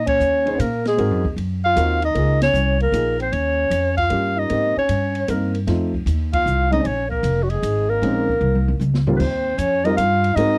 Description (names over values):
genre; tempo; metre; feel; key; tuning
jazz, small-group swing and bop; 153 BPM; 3/4; swing 67% on 8ths; Bb minor; A4 = 440 Hz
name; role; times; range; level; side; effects
breathy clarinet; melody; 0.0-10.6 s; Gb4 to F5; -24 LUFS; equal; none
trombone with cup mute; second line; 0.0-10.6 s; Gb3 to F4; -27 LUFS; equal; none
upright bass; bass; 0.0-10.6 s; F1 to Bb2; -24 LUFS; equal; none
open jazz drum kit; drums; 0.1-10.5 s; crash cymbal, hi-hat, kick drum, ride cymbal, snare drum, toms; -32 LUFS; equal; none
dark upright piano; accompaniment; 0.5-10.6 s; Eb2 to C5; -26 LUFS; equal; none
room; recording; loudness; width
little or no reverb; dry, close 1970s-style studio recording; -20 LUFS; mono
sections
0.0-9.2 A section; 9.2-10.6 B section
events
band accent 0.0, 2.4, 6.3; drum fill 8.4-9.2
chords
0.0 Bbm11; 1.0 Ab7; 2.2 Db69; 3.3 Eb7; 4.5 Abmaj7; 5.7 F7; 6.9 Bbm11; 9.2 Eb6